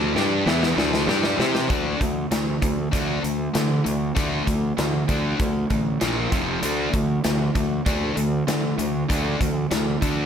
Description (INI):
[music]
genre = hard rock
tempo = 97 BPM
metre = 4/4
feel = straight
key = D minor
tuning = A4 = 439 Hz
[part]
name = overdriven electric guitar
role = riff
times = 0.0-10.3 s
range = F2 to C5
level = -26 LUFS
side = left 9 dB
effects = none
[part]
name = sludgy distorted guitar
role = riff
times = 0.0-10.3 s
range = F2 to C5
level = -26 LUFS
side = right 10 dB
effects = overdrive
[part]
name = fuzz fingered electric bass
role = bass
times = 0.0-10.3 s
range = F1 to D3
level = -27 LUFS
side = equal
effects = overdrive
[part]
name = big rock drum kit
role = drums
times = 0.2-10.2 s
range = hi-hat, kick drum, snare drum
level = -25 LUFS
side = equal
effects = none
[sound]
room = light reverb, studio ambience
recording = none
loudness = -20 LUFS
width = side -8 dB against mid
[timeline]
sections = 0.0-1.7 A section; 1.7-10.3 B section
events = drum fill 0.0-1.7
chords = 0.0 D5; 6.0 Bb5; 6.3 F5; 6.6 D5